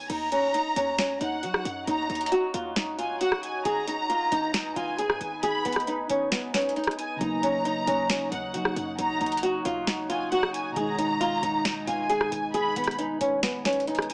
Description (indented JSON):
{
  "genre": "hip hop, trap",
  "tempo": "135 BPM",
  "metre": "4/4",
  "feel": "half-time",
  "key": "Eb minor",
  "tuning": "A4 = 441 Hz",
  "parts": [
    { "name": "warm studio violin section", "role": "second line", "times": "0.0-14.1 s", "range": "Gb5 to Cb6", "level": "-32 LUFS", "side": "equal", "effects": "tape echo" },
    { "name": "short 808-style bass", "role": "bass", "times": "0.0-14.1 s", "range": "Ab1 to Gb3", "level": "-43 LUFS", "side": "equal", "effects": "none" },
    { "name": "flamenco guitar", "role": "melody", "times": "0.1-14.1 s", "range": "Cb4 to Ab4", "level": "-30 LUFS", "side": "equal", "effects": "tape echo" },
    { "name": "deep dark ambient pad", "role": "sustained chords", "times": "1.5-14.1 s", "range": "Eb4 to Ab5", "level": "-39 LUFS", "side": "equal", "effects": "chorus, built-in reverb" },
    { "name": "booming analog drum machine", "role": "drums", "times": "0.1-14.1 s", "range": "crash cymbal, hi-hat, rim click, snare drum", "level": "-32 LUFS", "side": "equal", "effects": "none" },
    { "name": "mellow tine electric piano", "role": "accompaniment", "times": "7.2-14.1 s", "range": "Cb3 to Eb4", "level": "-38 LUFS", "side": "equal", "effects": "none" }
  ],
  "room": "moderate plate reverb, RT60 1.2 s",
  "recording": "small speaker sound",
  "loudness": "-27 LUFS",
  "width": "mono",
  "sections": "0.1-14.1 A section",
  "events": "none",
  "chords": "0.1 Ebm7; 3.7 Abm; 7.2 Ebm7; 10.8 Abm"
}